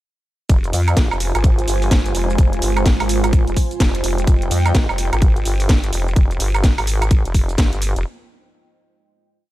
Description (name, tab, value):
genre	bass house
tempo	127 BPM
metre	4/4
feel	swing 62% on 16ths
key	F minor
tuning	A4 = 439 Hz
part	deep dark ambient pad	sustained chords	1.7-6.1 s	Ab3 to F5	-28 LUFS	right 3 dB	chorus, built-in reverb, sidechain pumping
part	vowel-sweep wobble bass	bass	0.5-8.0 s	F1 to F2	-19 LUFS	equal	chorus, sidechain pumping
part	electronic kick drum	drums	0.5-7.7 s	none	-14 LUFS	equal	studio reverb
part	garage drum kit	drums	0.5-8.0 s	hi-hat, shaker, snare drum, woodblock	-23 LUFS	right 1 dB	studio reverb
part	airy breathy pad	texture	0.5-6.2 s	F4 to Ab5	-28 LUFS	right 1 dB	chorus, sidechain pumping
room	little or no reverb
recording	none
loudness	-15 LUFS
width	side -16 dB against mid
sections	0.5-8.1 drop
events	drop 0.5-8.1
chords	0.5 Fm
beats	| 0.49 0.97 1.44 1.91 | 2.38 2.86 3.33 3.80 | 4.28 4.75 5.22 5.69 | 6.16 6.64 7.11 7.58